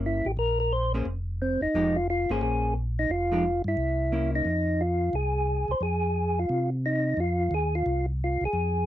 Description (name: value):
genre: jazz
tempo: 177 BPM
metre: 4/4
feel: swing 64% on 8ths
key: F minor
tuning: A4 = 440 Hz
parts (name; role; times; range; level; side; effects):
- vintage hollow-body jazz guitar; accompaniment; 0.0-4.5 s; F3 to C5; -30 LUFS; equal; none
- mellow tonewheel organ; bass; 0.0-8.9 s; F1 to C3; -28 LUFS; equal; slow rotary speaker
- percussive tonewheel organ; melody; 0.1-8.9 s; C4 to C5; -26 LUFS; equal; slow rotary speaker
room: light reverb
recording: dry, close 1970s-style studio recording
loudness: -24 LUFS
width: side -13 dB against mid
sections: 0.0-4.5 A section; 4.5-8.9 A section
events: none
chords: 0.4 Bbsus2; 1.7 Fm9; 2.4 Bbm9; 3.1 Fm9; 3.8 C7b9; 4.5 Fm7